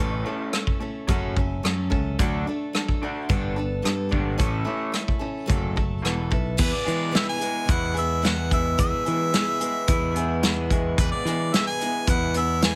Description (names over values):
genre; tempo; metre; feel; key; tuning
folk rock and heartland rock; 109 BPM; 4/4; straight; A mixolydian; A4 = 439 Hz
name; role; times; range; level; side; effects
picked steel-string acoustic guitar; accompaniment; 0.0-12.8 s; F#2 to A4; -32 LUFS; equal; none
electric guitar through a small old amp; riff; 0.0-12.8 s; E2 to F#4; -34 LUFS; equal; none
picked electric bass; bass; 0.0-12.8 s; E1 to E3; -30 LUFS; equal; none
soft brush drum kit; drums; 0.5-12.8 s; crash cymbal, hi-hat, kick drum, rim click, snare drum; -27 LUFS; equal; none
warm harmonica; melody; 6.6-12.8 s; B4 to G#5; -29 LUFS; equal; none
room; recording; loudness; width
small room ambience; none; -24 LUFS; mono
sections
0.0-6.6 A section; 6.6-12.8 B section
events
none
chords
0.0 A; 1.1 F#m; 2.2 D; 3.3 Gadd9; 4.4 A; 5.5 F#m; 6.0 Esus4; 6.6 E